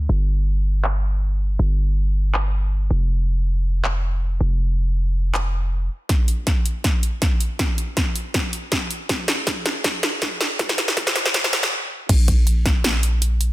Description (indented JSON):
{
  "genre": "future bass",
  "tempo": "160 BPM",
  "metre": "4/4",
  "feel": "swing 53% on 16ths, half-time",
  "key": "unclear",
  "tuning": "A4 = 439 Hz",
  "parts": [
    { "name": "warm 808-style bass", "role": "bass", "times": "0.0-13.5 s", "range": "F1 to D2", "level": "-19 LUFS", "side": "equal", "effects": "sidechain pumping, high-pass filter" },
    { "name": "big-room dance drum kit", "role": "drums", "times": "0.8-13.5 s", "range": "crash cymbal, handclaps, hi-hat, ride cymbal, snare drum", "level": "-22 LUFS", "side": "equal", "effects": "none" },
    { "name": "electronic kick drum", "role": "drums", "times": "6.1-12.7 s", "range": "none", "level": "-21 LUFS", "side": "equal", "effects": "none" }
  ],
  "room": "little or no reverb",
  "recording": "dense, heavily limited modern master, high-pass filter, low-pass filter",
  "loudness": "-18 LUFS",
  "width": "side -17 dB against mid",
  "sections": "0.0-6.1 A section; 6.1-12.1 B section; 12.1-13.5 C section",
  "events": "filter sweep 0.0-6.1, 6.1-12.1; build-up 6.1-12.1; drum fill 6.1-11.7; stop 11.7-12.1; drop 12.1-13.5",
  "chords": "none",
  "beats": "| 0.09 0.47 0.84 1.22 | 1.59 1.97 2.34 2.72 | 3.09 3.47 3.84 4.22 | 4.59 4.97 5.34 5.72 | 6.09 6.47 6.84 7.22 | 7.59 7.97 8.34 8.72 | 9.09 9.47 9.84 10.22 | 10.59 10.97 11.34 11.72 | 12.09 12.47 12.84 13.22"
}